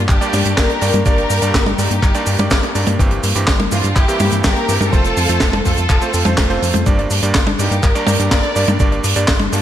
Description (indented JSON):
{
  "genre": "italo disco",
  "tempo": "124 BPM",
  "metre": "4/4",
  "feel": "straight",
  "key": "G minor",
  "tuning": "A4 = 440 Hz",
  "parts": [
    { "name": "warm studio violin section", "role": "melody", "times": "0.0-9.6 s", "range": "D4 to D5", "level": "-21 LUFS", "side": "left 1 dB", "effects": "tape echo" },
    { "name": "analog pluck", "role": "arpeggios", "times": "0.0-9.6 s", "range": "E3 to D5", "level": "-26 LUFS", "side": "left 3 dB", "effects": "chorus, tape echo" },
    { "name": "round analog bass", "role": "bass", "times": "0.0-9.6 s", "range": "F1 to G2", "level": "-19 LUFS", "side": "equal", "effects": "none" },
    { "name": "electronic kick drum", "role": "drums", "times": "0.1-9.4 s", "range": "none", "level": "-16 LUFS", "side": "equal", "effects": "none" },
    { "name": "tight funk drum kit", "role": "drums", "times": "0.1-9.6 s", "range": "cabasa, handclaps, hi-hat, snare drum, toms", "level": "-18 LUFS", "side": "equal", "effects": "gated reverb" },
    { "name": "bright electric grand piano", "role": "stabs", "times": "0.2-9.6 s", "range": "G2 to D5", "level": "-22 LUFS", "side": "right 3 dB", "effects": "none" }
  ],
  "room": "light reverb, studio reverb",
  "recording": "none",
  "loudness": "-13 LUFS",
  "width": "side -11 dB against mid",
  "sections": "0.0-9.6 A section",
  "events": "none",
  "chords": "0.0 Gm; 3.0 C7/G; 4.9 F; 6.9 Gm"
}